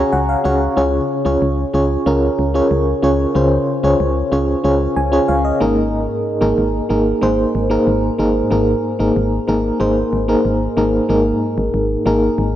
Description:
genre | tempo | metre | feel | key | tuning
1980s-style pop | 93 BPM | 4/4 | straight | unclear | A4 = 439 Hz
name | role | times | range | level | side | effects
FM electric piano with tremolo | accompaniment | 0.0-12.6 s | Ab2 to Bb5 | -15 LUFS | equal | none
solid FM bass | bass | 0.0-12.6 s | Ab1 to Db2 | -20 LUFS | equal | none
room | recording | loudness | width
moderate lush hall reverb, RT60 2.6 s | none | -14 LUFS | side -12 dB against mid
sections
0.0-11.1 A section; 11.1-12.6 B section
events
FM electric piano fill 0.0-0.8, 4.6-5.9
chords
0.0 Gbsus2/Db; 0.8 Db; 5.6 Absus2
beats
0.13 | 0.77 1.42 2.06 2.71 | 3.35 4.00 4.64 5.29 | 5.93 6.58 7.22 7.87 | 8.51 9.16 9.80 10.45 | 11.10 11.74 12.38

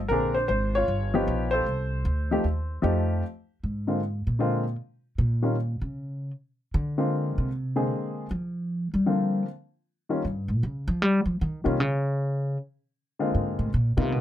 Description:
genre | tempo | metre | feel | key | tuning
jazz piano trio | 154 BPM | 4/4 | swing 66% on 8ths | Bb mixolydian | A4 = 438 Hz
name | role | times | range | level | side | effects
warm baby grand piano | melody | 0.0-14.2 s | D3 to Db5 | -26 LUFS | left 2 dB | none
upright bass | bass | 0.0-14.2 s | G1 to G3 | -26 LUFS | equal | none
room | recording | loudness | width
little or no reverb | close, detailed microphones | -24 LUFS | side -12 dB against mid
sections
0.0-3.2 A section; 3.2-14.2 B section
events
upright bass solo 3.2-14.2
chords
0.1 Bb9; 0.9 G7alt; 1.7 F9; 3.2 Bb9; 4.8 Eb7(no3) (rootless); 6.3 Bb9; 9.4 Eb7 (rootless); 12.6 Bb9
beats
| 0.10 0.49 0.88 1.27 | 1.66 2.05 2.44 2.83 | 3.22 3.61 4.00 4.39 | 4.78 5.17 5.56 5.95 | 6.34 6.73 7.12 7.50 | 7.89 8.28 8.67 9.06 | 9.45 9.84 10.22 10.61 | 11.00 11.39 11.78 12.16 | 12.55 12.94 13.33 13.71 | 14.10

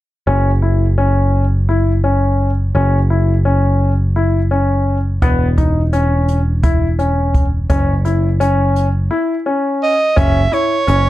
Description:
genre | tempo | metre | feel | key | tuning
progressive instrumental, band music in an uneven meter | 170 BPM (eighths) | 7/8 | straight | unclear | A4 = 441 Hz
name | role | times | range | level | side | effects
clear concert grand piano | arpeggios | 0.3-11.1 s | B3 to E4 | -18 LUFS | left 2 dB | none
picked electric bass | bass | 0.3-11.1 s | E1 to F#1 | -14 LUFS | equal | none
jazz brush drum kit | drums | 5.2-11.0 s | hi-hat, kick drum | -17 LUFS | equal | none
breathy soprano saxophone | melody | 9.8-11.1 s | C#5 to E5 | -14 LUFS | right 3 dB | plate reverb
room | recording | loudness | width
light reverb | dark, warm production | -12 LUFS | side -15 dB against mid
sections
0.3-10.2 A section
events
none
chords
0.3 F#5; 5.2 E5; 7.7 F#5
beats
| 0.27 0.63 0.98 1.33 1.69 2.04 2.40 | 2.75 3.10 3.46 3.81 4.17 4.52 4.87 | 5.23 5.58 5.93 6.29 6.64 6.99 7.35 | 7.70 8.05 8.41 8.76 9.11 9.47 9.82 | 10.17 10.53 10.88

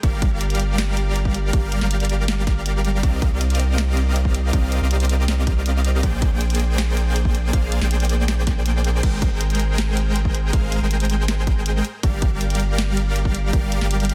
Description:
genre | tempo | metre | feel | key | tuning
future bass | 160 BPM | 4/4 | half-time | unclear | A4 = 440 Hz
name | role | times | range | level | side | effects
dense compressed supersaw | riff | 0.0-14.1 s | G3 to G5 | -28 LUFS | equal | sidechain pumping, delay
saturated sub bass | bass | 0.0-14.1 s | G1 to C2 | -23 LUFS | equal | sidechain pumping
electronic kick drum | drums | 0.0-13.6 s | none | -22 LUFS | equal | none
trap drum kit | drums | 0.0-14.1 s | crash cymbal, hi-hat, snare drum | -30 LUFS | equal | none
room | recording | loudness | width
digital ambience | dense, heavily limited modern master | -20 LUFS | mono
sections
0.0-14.1 A section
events
kick drops out 8.7-9.0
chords
0.0 Gm7; 3.0 Cm11; 6.0 Bb13; 9.0 Abmaj7; 11.8 Gm7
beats
| 0.03 0.41 0.78 1.16 | 1.53 1.91 2.28 2.66 | 3.03 3.41 3.78 4.16 | 4.53 4.91 5.28 5.66 | 6.03 6.41 6.78 7.16 | 7.53 7.91 8.28 8.66 | 9.03 9.41 9.78 10.16 | 10.53 10.91 11.28 11.66 | 12.03 12.41 12.78 13.16 | 13.53 13.91

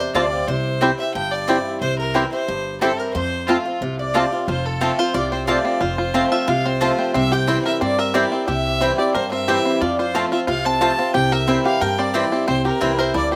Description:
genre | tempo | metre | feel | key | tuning
bluegrass | 180 BPM | 4/4 | straight | F major | A4 = 440 Hz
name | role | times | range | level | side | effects
clear fiddle | melody | 0.0-13.4 s | F4 to A5 | -27 LUFS | equal | none
lap resonator guitar | second line | 0.0-13.4 s | F4 to A5 | -30 LUFS | equal | none
picked swing-style acoustic guitar | accompaniment | 0.0-13.4 s | F2 to F4 | -26 LUFS | equal | slapback echo
upright bass | bass | 0.0-13.4 s | F1 to G2 | -29 LUFS | equal | none
mandolin | stabs | 0.1-12.9 s | C4 to A5 | -26 LUFS | equal | none
bluegrass banjo | arpeggios | 0.2-13.4 s | C4 to Bb4 | -24 LUFS | equal | slapback echo
room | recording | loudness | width
little or no reverb | recorded outdoors, with no room sound | -20 LUFS | mono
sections
0.0-4.5 A section; 4.5-13.4 A section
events
none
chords
0.5 C; 3.1 F; 7.1 C; 9.8 F; 11.1 C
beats
0.15 | 0.48 0.82 1.15 1.48 | 1.82 2.15 2.48 2.81 | 3.15 3.48 3.81 4.15 | 4.48 4.81 5.15 5.48 | 5.81 6.15 6.48 6.81 | 7.15 7.48 7.81 8.15 | 8.48 8.81 9.15 9.48 | 9.81 10.15 10.48 10.81 | 11.15 11.48 11.81 12.15 | 12.48 12.81 13.15

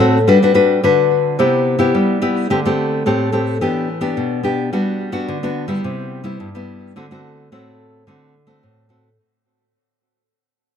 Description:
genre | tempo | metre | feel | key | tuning
samba | 108 BPM | 4/4 | straight | unclear | A4 = 440 Hz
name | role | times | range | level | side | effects
nylon-string guitar | solo | 0.0-9.2 s | G2 to B4 | -15 LUFS | left 2 dB | tape echo
room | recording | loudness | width
light reverb | close, detailed microphones | -14 LUFS | side -8 dB against mid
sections
0.3-9.2 A section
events
fade-out 0.3-9.2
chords
0.3 Gmaj7; 1.4 Cmaj7; 2.5 D7sus4; 3.6 Em7; 4.7 Gmaj7; 5.8 Cmaj7; 7.0 D7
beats
| 0.29 0.84 1.40 1.95 | 2.51 3.06 3.62 4.17 | 4.73 5.29 5.84 6.40 | 6.96 7.51 8.07 8.63

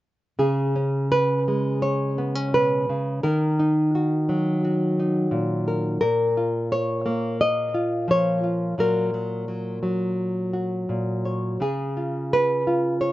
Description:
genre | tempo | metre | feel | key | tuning
folk, solo fingerstyle acoustic guitar | 86 BPM | 4/4 | rubato | unclear | A4 = 435 Hz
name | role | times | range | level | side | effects
nylon-string guitar | solo | 0.4-13.1 s | A#2 to D#5 | -21 LUFS | equal | none
room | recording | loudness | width
light reverb | recorded outdoors, with no room sound, nothing above 7.7 kHz | -21 LUFS | side -16 dB against mid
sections
0.4-13.1 A section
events
none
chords
0.4 C#5; 3.2 D#m; 6.0 A#m; 8.8 F#/A#; 11.6 C#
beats
| 0.40 1.12 1.83 2.54 | 3.25 3.95 4.64 5.33 | 6.02 6.71 7.40 8.09 | 8.78 9.48 10.18 10.89 | 11.61 12.32 13.02

